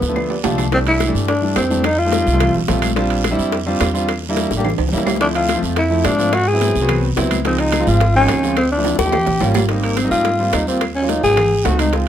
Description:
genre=Afro-Cuban jazz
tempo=214 BPM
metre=4/4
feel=straight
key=C major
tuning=A4 = 435 Hz
part: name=growling tenor saxophone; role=melody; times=0.0-2.5, 5.2-11.9 s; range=Bb3 to Ab4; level=-17 LUFS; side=left 1 dB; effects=none
part: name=upright bass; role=bass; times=0.0-12.1 s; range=Ab1 to Ab2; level=-21 LUFS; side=right 1 dB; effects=none
part: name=bongos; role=percussion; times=0.0-12.1 s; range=none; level=-26 LUFS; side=left 8 dB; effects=none
part: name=congas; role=percussion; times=0.0-12.1 s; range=none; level=-27 LUFS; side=left 1 dB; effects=none
part: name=guiro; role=percussion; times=0.0-12.1 s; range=none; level=-31 LUFS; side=right 8 dB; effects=none
part: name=clear concert grand piano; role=accompaniment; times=0.1-12.1 s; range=D3 to A5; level=-21 LUFS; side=equal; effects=none
part: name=claves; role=percussion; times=0.2-11.9 s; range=none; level=-31 LUFS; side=equal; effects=none
part: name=timbales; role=percussion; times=0.2-12.1 s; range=none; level=-25 LUFS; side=right 8 dB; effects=none
room=light reverb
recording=none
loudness=-14 LUFS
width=side -10 dB against mid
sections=0.7-9.7 A section; 9.7-12.1 B section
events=drum fill 0.0-0.7, 4.5-5.2, 8.9-9.7; grand piano fill 0.2-0.7; tenor saxophone solo 9.7-12.1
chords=0.0 G9 (rootless); 0.7 C69; 1.8 F9; 3.0 Bb6; 4.1 Em7b5; 4.6 A7b9; 5.2 Dm9; 6.3 Ab7alt; 7.5 Dbmaj7; 8.6 Dm7; 9.1 Eb7; 9.7 Abmaj7; 10.8 Ebm7; 11.4 Ab7b9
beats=0.16 0.44 | 0.72 1.00 1.28 1.56 | 1.84 2.12 2.41 2.69 | 2.97 3.25 3.53 3.81 | 4.09 4.37 4.65 4.93 | 5.21 5.49 5.77 6.05 | 6.33 6.61 6.89 7.17 | 7.45 7.73 8.01 8.29 | 8.57 8.85 9.13 9.41 | 9.69 9.97 10.25 10.53 | 10.81 11.09 11.38 11.65 | 11.94

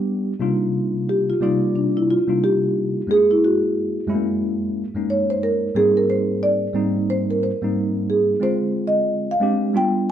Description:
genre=hip hop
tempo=90 BPM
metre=4/4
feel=swing 61% on 16ths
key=C minor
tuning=A4 = 440 Hz
part: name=tine electric piano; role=accompaniment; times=0.0-10.1 s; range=F#2 to D5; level=-21 LUFS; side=equal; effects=medium stereo tremolo
part: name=marimba with soft mallets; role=melody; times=1.1-9.9 s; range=D4 to G5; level=-20 LUFS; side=right 1 dB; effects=none
room=moderate studio reverb, RT60 0.9 s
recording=band playing live in one room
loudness=-18 LUFS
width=side -10 dB against mid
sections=0.4-10.1 A section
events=marimba solo 0.4-10.1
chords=0.4 Cm11; 3.1 F#9; 5.7 Abmaj7; 8.4 Dm7b5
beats=| 0.41 1.08 1.75 2.41 | 3.08 3.75 4.41 5.08 | 5.75 6.41 7.08 7.75 | 8.41 9.08 9.75

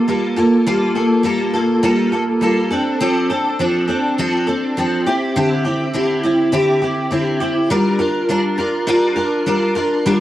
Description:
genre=indie pop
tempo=102 BPM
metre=4/4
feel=swing 60% on 16ths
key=G dorian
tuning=A4 = 441 Hz
part: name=picked steel-string acoustic guitar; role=solo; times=0.0-10.2 s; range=D3 to Bb4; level=-15 LUFS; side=equal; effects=ensemble chorus, vibrato effect
room=light reverb, small room ambience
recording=worn, warbling old tape, cassette tape, warbly pitch drift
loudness=-15 LUFS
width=side -13 dB against mid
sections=0.0-7.7 A section; 7.7-10.2 B section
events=none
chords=0.0 Gm9; 2.7 F6; 5.1 D9sus4; 7.7 Gm7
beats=0.08 | 0.67 1.25 1.84 2.43 | 3.01 3.60 4.19 4.77 | 5.36 5.95 6.53 7.12 | 7.70 8.29 8.87 9.46 | 10.04

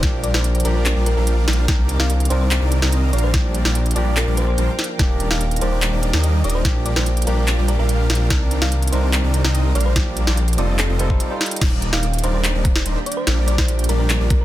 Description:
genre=future bass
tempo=145 BPM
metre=4/4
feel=half-time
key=Bb major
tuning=A4 = 440 Hz
part: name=thumb-piano-like synth pluck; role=melody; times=0.0-14.4 s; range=A4 to F5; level=-28 LUFS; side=equal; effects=chorus, sidechain pumping, ping-pong delay
part: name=barky tine electric piano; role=accompaniment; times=0.0-11.6 s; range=Eb3 to C5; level=-29 LUFS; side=right 2 dB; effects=sidechain pumping, ping-pong delay
part: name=shimmering ambient pad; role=sustained chords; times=0.0-14.4 s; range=Eb3 to D6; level=-34 LUFS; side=right 1 dB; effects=chorus, built-in reverb, sidechain pumping
part: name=dense compressed supersaw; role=riff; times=0.0-14.4 s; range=G3 to F5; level=-27 LUFS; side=right 1 dB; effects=sidechain pumping
part: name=wide detuned saw bass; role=bass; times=0.0-14.4 s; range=Eb1 to Eb2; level=-19 LUFS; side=equal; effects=chorus, tube saturation, sidechain pumping
part: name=electronic kick drum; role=drums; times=0.0-14.4 s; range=none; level=-18 LUFS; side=equal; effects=studio ambience
part: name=trap drum kit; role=drums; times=0.0-14.4 s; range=crash cymbal, handclaps, hi-hat, snare drum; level=-24 LUFS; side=equal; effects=studio ambience
room=little or no reverb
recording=dense, heavily limited modern master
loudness=-16 LUFS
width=side -14 dB against mid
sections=0.0-11.6 A section; 11.6-14.4 A section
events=drop 0.0-11.6, 11.6-14.4; break 11.2-11.6; drum fill 11.4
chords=0.0 Bb6; 1.7 Cm9; 3.1 Bb6; 5.0 Ebmaj7; 6.6 Bb6; 8.3 Cm9; 9.8 Bb6; 10.8 F9; 11.6 Ebmaj7; 13.3 Bb6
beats=| 0.03 0.44 0.86 1.27 | 1.68 2.10 2.51 2.92 | 3.34 3.75 4.17 4.58 | 4.99 5.41 5.82 6.24 | 6.65 7.06 7.48 7.89 | 8.30 8.72 9.13 9.55 | 9.96 10.37 10.79 11.20 | 11.62 12.03 12.44 12.86 | 13.27 13.68 14.10

